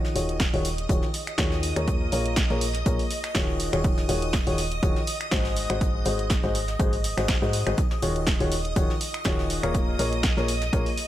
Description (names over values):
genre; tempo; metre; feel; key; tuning
piano house; 122 BPM; 4/4; swing 54% on 16ths; Eb dorian; A4 = 440 Hz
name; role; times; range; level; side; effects
string machine, violins; sustained chords; 0.0-11.1 s; Eb5 to Eb6; -34 LUFS; right 1 dB; ensemble chorus, sidechain pumping
clear upright piano; riff; 0.0-10.9 s; Eb3 to Db5; -28 LUFS; left 2 dB; sidechain pumping, low-pass filter, ping-pong delay
soft brush drum kit; drums; 0.0-11.1 s; hi-hat, snare drum; -38 LUFS; left 2 dB; sidechain pumping on hats, high-pass filter on hats, high-pass filter on snare, high-pass filter on room
solid FM bass; bass; 0.2-10.9 s; Eb1 to Ab2; -29 LUFS; equal; sidechain pumping
punchy analog drum machine; drums; 0.2-11.1 s; finger snaps, hi-hat, snare drum; -30 LUFS; right 1 dB; none
electronic kick drum; drums; 0.4-10.8 s; none; -26 LUFS; equal; none
room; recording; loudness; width
small room ambience; none; -22 LUFS; side -13 dB against mid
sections
0.0-11.1 A section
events
none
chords
0.0 Ebm11; 5.6 Ab7; 7.8 Ebm11